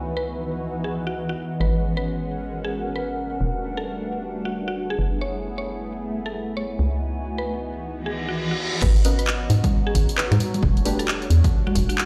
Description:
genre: UK garage, two-step garage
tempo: 133 BPM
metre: 4/4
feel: swing 62% on 16ths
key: G# phrygian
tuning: A4 = 438 Hz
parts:
  - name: warm analog pad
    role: sustained chords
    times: 0.0-12.1 s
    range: G3 to G#4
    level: -36 LUFS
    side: equal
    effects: chorus, sidechain pumping
  - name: hollow knocking FM bass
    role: bass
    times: 0.0-11.9 s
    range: E1 to G#2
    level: -26 LUFS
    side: equal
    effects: none
  - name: granular cloud pad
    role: texture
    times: 0.0-12.1 s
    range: E3 to A#5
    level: -33 LUFS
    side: equal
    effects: built-in reverb, sidechain pumping
  - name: mallet-like synth pluck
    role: melody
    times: 0.2-12.0 s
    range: F#4 to C#5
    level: -34 LUFS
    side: equal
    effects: chorus, dub echo
  - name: reverse cymbal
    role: sound effects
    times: 8.1-8.8 s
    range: none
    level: -31 LUFS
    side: equal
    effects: none
  - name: electronic kick drum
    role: drums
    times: 8.8-11.9 s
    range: none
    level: -24 LUFS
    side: equal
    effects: small room ambience
  - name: house drum kit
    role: drums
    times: 8.8-12.1 s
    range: congas, crash cymbal, finger snaps, handclaps, hi-hat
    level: -28 LUFS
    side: equal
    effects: low-pass filter on cymbals, small room ambience, low-pass filter on hats, low-pass filter on snare, low-pass filter on perc
  - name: deep mellow chord stab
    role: stabs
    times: 9.0-11.0 s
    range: A3 to D#5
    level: -32 LUFS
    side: equal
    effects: chorus, phaser
room: digital ambience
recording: played on a big sound system in a bare room, stone room reverb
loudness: -24 LUFS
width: mono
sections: 0.0-8.8 A section; 8.8-12.1 B section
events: reverse cymbal 8.1-8.8; drop 8.8-12.1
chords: 0.0 C#m11; 1.6 G#m11; 3.4 Em11; 5.0 F#m11; 6.8 C#m11; 8.8 G#m11; 10.6 Em11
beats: 0.25 0.70 1.15 | 1.60 2.06 2.51 2.96 | 3.41 3.86 4.31 4.76 | 5.21 5.67 6.12 6.57 | 7.02 7.47 7.92 8.37 | 8.82 9.27 9.72 10.18 | 10.63 11.08 11.53 11.98

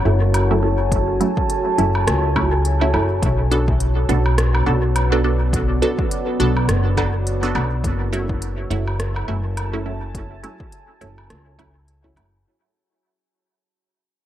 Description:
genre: ambient dub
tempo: 104 BPM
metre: 4/4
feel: swing 58% on 16ths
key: unclear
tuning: A4 = 440 Hz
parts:
  - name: deep dark ambient pad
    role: sustained chords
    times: 0.0-12.5 s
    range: B3 to A5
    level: -24 LUFS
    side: equal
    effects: chorus, built-in reverb
  - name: upright bass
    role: bass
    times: 0.0-12.4 s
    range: F#1 to C#2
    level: -19 LUFS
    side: equal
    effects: none
  - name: filtered dub chord stab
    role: stabs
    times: 0.1-12.4 s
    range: F#3 to A4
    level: -24 LUFS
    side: right 2 dB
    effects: phaser, dub echo
  - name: organic electronic drum kit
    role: drums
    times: 0.3-12.3 s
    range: hi-hat, rim click, woodblock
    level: -27 LUFS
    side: right 1 dB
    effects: overdrive, dub echo
  - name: electronic kick drum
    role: drums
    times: 0.9-12.1 s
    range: none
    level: -24 LUFS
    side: equal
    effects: overdrive
room: light reverb, digital ambience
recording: none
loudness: -17 LUFS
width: side -12 dB against mid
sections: 0.0-12.5 A section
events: fade-out 6.3-12.5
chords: 0.0 F#m7; 3.2 Bm7; 7.8 F#m7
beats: 0.34 | 0.92 1.49 2.07 2.65 | 3.23 3.80 4.38 4.96 | 5.53 6.11 6.69 7.26 | 7.84 8.42 8.99 9.57 | 10.15 10.72 11.30 11.88

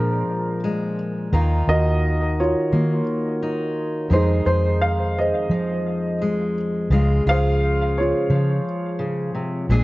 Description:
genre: acoustic folk-pop ballad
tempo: 86 BPM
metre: 4/4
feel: straight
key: Db major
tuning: A4 = 440 Hz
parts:
  - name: dark baby grand piano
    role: melody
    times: 0.0-9.7 s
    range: D4 to F5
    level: -24 LUFS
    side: right 1 dB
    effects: tape echo
  - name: fingerpicked steel-string acoustic guitar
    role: accompaniment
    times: 0.0-9.8 s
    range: F2 to Ab4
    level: -24 LUFS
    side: left 1 dB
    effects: none
  - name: vintage muted fingered electric bass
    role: bass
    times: 0.0-9.8 s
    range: Bb1 to F3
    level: -20 LUFS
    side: equal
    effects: none
room: light reverb, small room reverb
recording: cassette tape, nothing above 7.9 kHz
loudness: -19 LUFS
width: side -19 dB against mid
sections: 0.0-9.8 A section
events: none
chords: 0.0 Bb7; 1.3 Ebmadd9; 4.1 Fm7; 6.9 Dbmaj7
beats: 0.64 | 1.33 2.03 2.72 3.42 | 4.12 4.81 5.51 6.21 | 6.91 7.61 8.31 9.00 | 9.70

